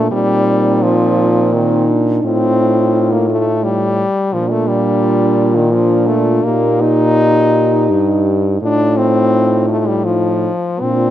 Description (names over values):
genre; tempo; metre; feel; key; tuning
classical, lyrical piece for horn quartet; 84 BPM; 3/4; rubato; unclear; A4 = 440 Hz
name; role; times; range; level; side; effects
mellow French horn; melody; 0.0-11.1 s; Eb4 to G4; -19 LUFS; left 6 dB; none
mellow French horn; second line; 0.0-11.1 s; C4 to Eb4; -20 LUFS; right 7 dB; none
warm French horn; accompaniment; 0.0-11.1 s; Eb3 to Eb4; -16 LUFS; left 2 dB; none
warm French horn; bass; 0.0-11.1 s; G2 to Bb2; -16 LUFS; right 2 dB; none
room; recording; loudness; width
light reverb; close, detailed microphones; -11 LUFS; side -11 dB against mid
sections
0.0-11.1 A section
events
none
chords
0.1 Cm7/Bb; 2.2 F7/A; 4.3 Bb; 6.4 Eb/Bb; 8.6 F7/A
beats
| 0.11 0.83 1.53 | 2.24 2.95 3.64 | 4.33 5.02 5.72 | 6.44 7.18 7.90 | 8.62 9.33 10.04 | 10.81